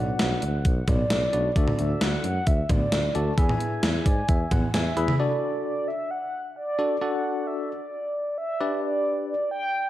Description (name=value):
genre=synth-pop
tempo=132 BPM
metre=4/4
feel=straight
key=D major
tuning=A4 = 440 Hz
part: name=mellow horn-like synth lead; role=melody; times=0.0-9.9 s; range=D5 to A5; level=-28 LUFS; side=equal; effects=chorus, slapback echo
part: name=bell-like tine electric piano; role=accompaniment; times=0.0-9.3 s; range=D4 to B5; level=-30 LUFS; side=left 1 dB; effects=medium stereo tremolo
part: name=warm tuba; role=bass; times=0.0-5.1 s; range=B1 to G#2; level=-27 LUFS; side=equal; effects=none
part: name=gated 80s digital drum machine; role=drums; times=0.2-5.2 s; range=hi-hat, kick drum, snare drum, toms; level=-24 LUFS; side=equal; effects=gated reverb, gated reverb snare, overdrive
room=light reverb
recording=dark, warm production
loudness=-23 LUFS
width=side -14 dB against mid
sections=0.0-5.2 A section; 5.2-9.9 B section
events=tine electric piano fill 3.8-5.2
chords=0.0 Bm; 1.6 D; 3.4 E; 5.2 D; 8.6 G